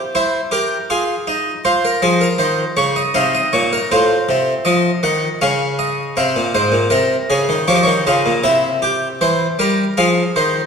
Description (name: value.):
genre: classical, baroque-style 3-part fugue for harpsichord.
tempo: 79 BPM.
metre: 3/4.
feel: straight.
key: unclear.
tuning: A4 = 441 Hz.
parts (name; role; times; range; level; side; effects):
harpsichord; solo; 0.0-10.7 s; Ab2 to Gb5; -14 LUFS; equal; none.
room: wet scoring stage reverb, RT60 1.9 s.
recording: recorded in a church or concert hall.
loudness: -14 LUFS.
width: side -6 dB against mid.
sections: 0.0-10.7 A section.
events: none.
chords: 0.0 C7; 0.9 Fm; 1.7 Bbm/F; 3.2 Bbmadd11; 3.9 F7/A; 5.4 Dbadd9; 6.2 Fm; 7.7 Gm7b5; 8.5 C7; 10.0 Fm.